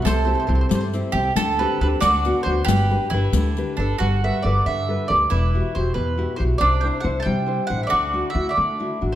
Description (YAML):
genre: italian folk, Italian serenade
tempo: 92 BPM (dotted quarters)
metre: 6/8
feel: straight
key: G major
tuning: A4 = 439 Hz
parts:
  - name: mandolin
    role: melody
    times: 0.0-9.2 s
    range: A4 to A5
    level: -24 LUFS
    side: right 2 dB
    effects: none
  - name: mandolin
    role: second line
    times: 0.0-9.0 s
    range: D4 to A4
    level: -27 LUFS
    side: right 5 dB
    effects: none
  - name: nylon-string guitar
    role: accompaniment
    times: 0.0-9.2 s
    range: B2 to C5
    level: -25 LUFS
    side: left 3 dB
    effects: none
  - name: upright bass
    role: bass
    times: 0.1-9.2 s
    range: E1 to D3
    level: -22 LUFS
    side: equal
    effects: none
  - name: riq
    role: percussion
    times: 0.1-3.7 s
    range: none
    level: -27 LUFS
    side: left 5 dB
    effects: none
room: moderate recital hall reverb, RT60 1.5 s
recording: none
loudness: -18 LUFS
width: side -12 dB against mid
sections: 0.0-4.0 A section; 4.0-9.2 B section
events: none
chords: 0.0 C; 1.4 D7sus4; 2.0 D6; 2.7 G; 4.0 Gadd9; 5.3 Emadd9; 6.6 Cadd9; 7.9 Dadd9